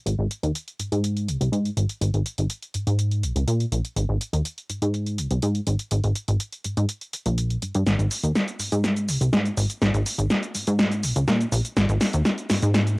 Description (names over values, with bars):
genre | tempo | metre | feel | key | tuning
filtered disco house | 123 BPM | 4/4 | straight | Ab major | A4 = 440 Hz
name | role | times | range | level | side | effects
plucky analog bass | bass | 0.1-13.0 s | Ab1 to Bb2 | -22 LUFS | equal | tube saturation, low-pass filter
punchy analog drum machine | drums | 0.1-13.0 s | hi-hat, shaker, snare drum | -25 LUFS | equal | overdrive
room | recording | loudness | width
light reverb | home recording on cassette | -22 LUFS | side -26 dB against mid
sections
0.0-7.9 A section; 7.9-13.0 B section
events
filter sweep on analog synth bass 0.0-7.9, 7.9-13.0; build-up 7.9-13.0; drum fill 7.9-13.0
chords
none